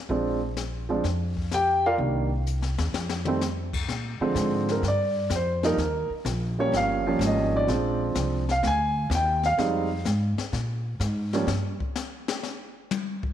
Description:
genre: jazz piano trio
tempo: 126 BPM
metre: 4/4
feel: swing 69% on 8ths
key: Bb mixolydian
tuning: A4 = 441 Hz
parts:
  - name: warm concert grand piano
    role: melody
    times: 0.1-11.5 s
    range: D3 to Ab5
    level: -25 LUFS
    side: right 1 dB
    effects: none
  - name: upright bass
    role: bass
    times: 0.1-11.8 s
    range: G1 to Bb2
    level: -28 LUFS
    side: equal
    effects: none
  - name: jazz brush drum kit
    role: drums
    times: 0.1-13.3 s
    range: brushed snare drum, crash cymbal, hi-hat, kick drum, snare drum, toms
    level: -33 LUFS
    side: left 6 dB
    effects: none
room: light reverb, small room ambience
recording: 1960s-style stereo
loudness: -24 LUFS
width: side -10 dB against mid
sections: 0.0-3.9 A section; 3.9-13.3 B section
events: drum fill 2.5-3.4; grand piano solo 3.9-13.3; drum solo 11.5-13.3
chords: 0.1 Bb7; 2.0 Cm7; 2.9 N.C.; 3.9 Bb7; 5.8 Eb7; 7.7 Bb7; 9.6 Fm7; 10.5 Bb5; 11.5 N.C.

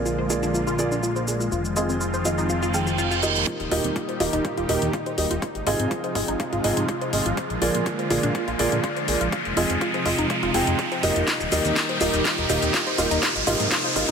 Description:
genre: progressive house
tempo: 123 BPM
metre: 4/4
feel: straight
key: unclear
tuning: A4 = 440 Hz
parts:
  - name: supersaw pad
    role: sustained chords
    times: 0.0-14.1 s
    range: Bb2 to G4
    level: -28 LUFS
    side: equal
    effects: phaser, sidechain pumping
  - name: felt-muted upright piano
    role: stabs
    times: 0.0-14.1 s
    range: Bb3 to G5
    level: -26 LUFS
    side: right 2 dB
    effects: vintage 12-bit sampler grit, sidechain pumping, low-pass filter, ping-pong delay
  - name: fat analog bass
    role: bass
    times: 0.0-14.1 s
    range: Eb1 to Bb2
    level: -29 LUFS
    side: left 1 dB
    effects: sidechain pumping
  - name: wide unison pluck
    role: arpeggios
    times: 0.1-14.1 s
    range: C4 to F5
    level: -29 LUFS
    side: left 1 dB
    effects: sidechain pumping, ping-pong delay
  - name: house drum kit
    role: drums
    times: 0.1-14.1 s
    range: hi-hat, shaker, snare drum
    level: -28 LUFS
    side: left 2 dB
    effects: overdrive, sidechain pumping on perc, small room ambience, sidechain pumping on hats
  - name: reverse cymbal and riser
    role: sound effects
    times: 2.7-14.1 s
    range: none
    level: -28 LUFS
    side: right 2 dB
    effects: none
  - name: electronic kick drum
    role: drums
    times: 3.5-14.1 s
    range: none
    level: -32 LUFS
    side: equal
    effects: high-pass filter on kick, small room ambience
room: moderate huge ambient reverb, RT60 4.1 s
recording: none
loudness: -21 LUFS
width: side -6 dB against mid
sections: 0.0-3.5 A section; 3.5-14.1 B section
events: filter sweep on synth pluck 0.0-3.5, 3.5-14.1; filter sweep on supersaw synth 0.0-3.5; reverse cymbal 2.7-3.5; build-up 3.5-14.1; riser 3.5-14.1; drum fill 11.3-14.1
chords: 0.0 Bb7; 1.5 Fm7; 3.5 Eb; 5.4 Ab6; 7.4 Bb7; 9.3 Fm7; 11.3 Eb; 13.2 Ab6

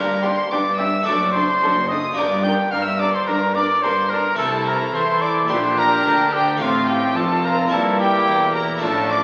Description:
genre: classical, baroque-style concerto movement with solo episodes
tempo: 108 BPM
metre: 4/4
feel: straight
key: unclear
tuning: A4 = 440 Hz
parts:
  - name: rich chamber violin section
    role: melody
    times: 0.0-9.2 s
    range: F5 to G6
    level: -27 LUFS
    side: equal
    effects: none
  - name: warm trumpet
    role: melody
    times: 0.0-9.2 s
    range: F4 to G5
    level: -23 LUFS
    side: equal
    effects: none
  - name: warm chamber violin section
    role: second line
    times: 0.0-9.2 s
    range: D4 to Bb4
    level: -29 LUFS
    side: equal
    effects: none
  - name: harpsichord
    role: accompaniment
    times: 0.0-9.2 s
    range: E2 to A4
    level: -28 LUFS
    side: equal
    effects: none
  - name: warm chamber viola section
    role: accompaniment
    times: 0.0-9.2 s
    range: F3 to E4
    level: -29 LUFS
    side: equal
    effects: none
  - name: rich chamber cello section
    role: bass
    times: 0.0-9.2 s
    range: E2 to E3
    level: -31 LUFS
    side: equal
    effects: none
  - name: rich chamber double bass section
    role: bass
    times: 0.0-9.2 s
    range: E1 to E2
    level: -32 LUFS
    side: equal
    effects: none
room: wet scoring stage reverb, RT60 1.6 s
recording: very old 78 rpm record, vinyl crackle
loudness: -19 LUFS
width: mono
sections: 0.0-9.2 A section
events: none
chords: 0.0 Gm; 1.1 D7/F#; 2.2 Gm; 4.4 Am/C; 5.5 Gm/Bb; 6.6 F/A; 7.7 Edim/G

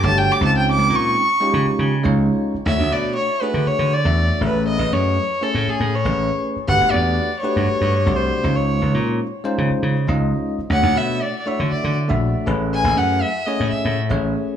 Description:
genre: jazz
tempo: 120 BPM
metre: 4/4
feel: straight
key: D lydian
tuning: A4 = 440 Hz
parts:
  - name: warm violin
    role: melody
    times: 0.0-13.9 s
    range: G#4 to D6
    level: -21 LUFS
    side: equal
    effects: slapback echo
  - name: bell-like tine electric piano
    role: accompaniment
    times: 0.0-14.6 s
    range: G#3 to E5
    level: -23 LUFS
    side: equal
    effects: medium stereo tremolo
  - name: slap bass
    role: bass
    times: 0.0-14.3 s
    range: G1 to D3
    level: -19 LUFS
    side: equal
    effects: none
room: light reverb, studio ambience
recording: small room ambience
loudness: -17 LUFS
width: side -9 dB against mid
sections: 0.0-2.7 A section; 2.7-14.6 B section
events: violin solo 0.0-2.7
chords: 0.4 C#maj9; 2.7 Dmaj9; 4.4 Amaj9; 6.7 Gmaj9; 8.5 C#maj9; 10.7 Dmaj9; 12.5 Amaj9

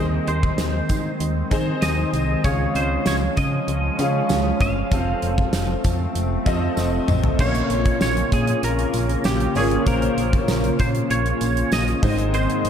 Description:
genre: 1980s-style pop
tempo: 97 BPM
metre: 4/4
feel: straight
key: Bb minor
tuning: A4 = 440 Hz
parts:
  - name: twangy electric guitar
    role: melody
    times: 0.0-12.7 s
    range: G4 to F5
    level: -27 LUFS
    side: right 1 dB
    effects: ensemble chorus, tape echo
  - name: clear concert grand piano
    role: accompaniment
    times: 0.0-12.7 s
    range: Ab2 to F5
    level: -25 LUFS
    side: left 1 dB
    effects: ensemble chorus
  - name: glassy FM pad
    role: sustained chords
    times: 0.0-12.7 s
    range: Db3 to Eb4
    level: -27 LUFS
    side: equal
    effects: ensemble chorus, built-in reverb
  - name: solid FM bass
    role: bass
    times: 0.0-12.7 s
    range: F1 to Eb3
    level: -24 LUFS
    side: equal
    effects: none
  - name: gated 80s drum kit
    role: drums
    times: 0.3-12.7 s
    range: crash cymbal, hi-hat, kick drum, snare drum, tambourine, toms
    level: -24 LUFS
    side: equal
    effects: none
  - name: tambourine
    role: percussion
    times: 0.6-12.5 s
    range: none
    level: -43 LUFS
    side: right 8 dB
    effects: none
  - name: analog synth brass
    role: stabs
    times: 7.4-12.7 s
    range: Db3 to F4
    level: -28 LUFS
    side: right 1 dB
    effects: chorus, tape echo
room: wet cathedral reverb, RT60 5.1 s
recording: dreamy mix soaked in reverb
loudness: -18 LUFS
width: side -8 dB against mid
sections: 0.0-7.4 A section; 7.4-12.7 B section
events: drum fill 6.8-7.4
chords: 0.0 Ab/Eb; 2.4 Db; 4.9 F; 7.4 Bbmadd9; 12.0 Ab

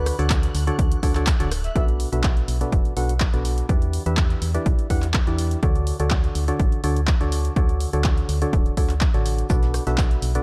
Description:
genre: piano house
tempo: 124 BPM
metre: 4/4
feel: straight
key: D major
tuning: A4 = 437 Hz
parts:
  - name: breathy flute-like synth lead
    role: melody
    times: 0.0-1.8 s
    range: B4 to E5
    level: -37 LUFS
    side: equal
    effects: analog chorus, delay
  - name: string machine, violins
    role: sustained chords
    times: 0.0-1.8 s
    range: F#6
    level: -48 LUFS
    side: equal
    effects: ensemble chorus, sidechain pumping
  - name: percussive organ stab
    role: riff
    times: 0.0-10.4 s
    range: B2 to F#5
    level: -30 LUFS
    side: equal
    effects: chorus, sidechain pumping, delay
  - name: solid FM bass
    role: bass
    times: 0.0-10.4 s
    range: D1 to E2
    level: -26 LUFS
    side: equal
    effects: sidechain pumping
  - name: punchy analog drum machine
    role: drums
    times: 0.1-10.4 s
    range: handclaps, hi-hat, rim click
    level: -33 LUFS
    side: equal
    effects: overdrive
  - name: soft brush drum kit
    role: drums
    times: 0.1-1.8, 9.5-10.3 s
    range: hi-hat, shaker, snare drum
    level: -43 LUFS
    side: equal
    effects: none
  - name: electronic kick drum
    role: drums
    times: 0.3-10.1 s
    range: none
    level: -23 LUFS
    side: equal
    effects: overdrive
room: small room ambience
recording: dark, warm production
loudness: -21 LUFS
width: mono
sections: 0.0-1.8 A section; 1.8-10.4 B section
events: drop 0.0-1.8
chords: 0.0 Dmaj7; 1.8 Bm7; 3.7 Em7; 5.6 Dmaj7; 9.5 Bm7

